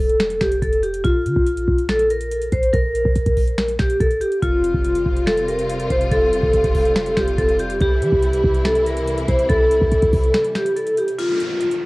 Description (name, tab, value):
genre	hip hop, trap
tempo	142 BPM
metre	4/4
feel	half-time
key	F major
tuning	A4 = 440 Hz
part	vibraphone with medium hard mallets	melody	0.0-11.9 s	F4 to C5	-18 LUFS	equal	low-pass filter, tape echo
part	clean 808-style bass	bass	0.0-10.3 s	E1 to E3	-24 LUFS	equal	none
part	booming analog drum machine	drums	0.1-11.8 s	finger snaps, hi-hat, kick drum, snare drum	-21 LUFS	equal	none
part	warm studio string section	sustained chords	4.4-11.2 s	C3 to F4	-27 LUFS	equal	cassette tape
part	downlifter	sound effects	11.2-11.9 s	none	-28 LUFS	equal	none
room	little or no reverb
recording	home recording on cassette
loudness	-16 LUFS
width	side -21 dB against mid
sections	0.0-11.2 A section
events	break 10.3-11.2; kick muted 11.2-11.9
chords	0.0 Fadd9; 1.0 Bb5; 4.4 Fadd9; 7.8 C; 11.2 N.C.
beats	0.20 0.62 | 1.04 1.47 1.89 2.31 | 2.73 3.16 3.58 4.00 | 4.42 4.85 5.27 5.69 | 6.12 6.54 6.96 7.38 | 7.80 8.23 8.65 9.07 | 9.50 9.92 10.34 10.76 | 11.19 11.61